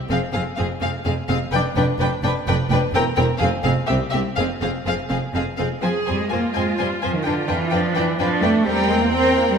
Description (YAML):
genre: quick classical-period movement for string orchestra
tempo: 127 BPM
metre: 3/4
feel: straight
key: F minor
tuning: A4 = 441 Hz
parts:
  - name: rich chamber violin section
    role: melody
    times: 0.1-9.6 s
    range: E5 to Ab5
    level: -27 LUFS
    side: left 3 dB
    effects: none
  - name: rich chamber violin section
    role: second line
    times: 0.1-9.6 s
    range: C4 to C5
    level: -25 LUFS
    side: left 3 dB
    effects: none
  - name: clear chamber viola section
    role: accompaniment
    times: 0.1-9.6 s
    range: C4 to Ab4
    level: -25 LUFS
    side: right 2 dB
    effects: none
  - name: rich chamber double bass section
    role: bass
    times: 0.1-9.6 s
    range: E1 to F2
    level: -26 LUFS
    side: right 3 dB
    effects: none
  - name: rich studio cello section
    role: bass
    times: 0.1-9.6 s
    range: C2 to C4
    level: -23 LUFS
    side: right 1 dB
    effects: none
room: wet scoring stage reverb, RT60 1.8 s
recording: minimal, uncompressed stereo recording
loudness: -18 LUFS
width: side -6 dB against mid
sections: 0.0-5.8 A section; 5.8-9.6 A section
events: none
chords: 0.1 Fm; 1.5 G7/F; 2.9 C7/E; 3.4 F5; 3.9 N.C.; 4.4 Fm; 7.3 G7/F; 8.7 C7/E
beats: | 0.10 0.58 1.06 | 1.53 2.00 2.47 | 2.93 3.40 3.88 | 4.37 4.85 5.34 | 5.83 6.30 6.78 | 7.25 7.72 8.19 | 8.66 9.13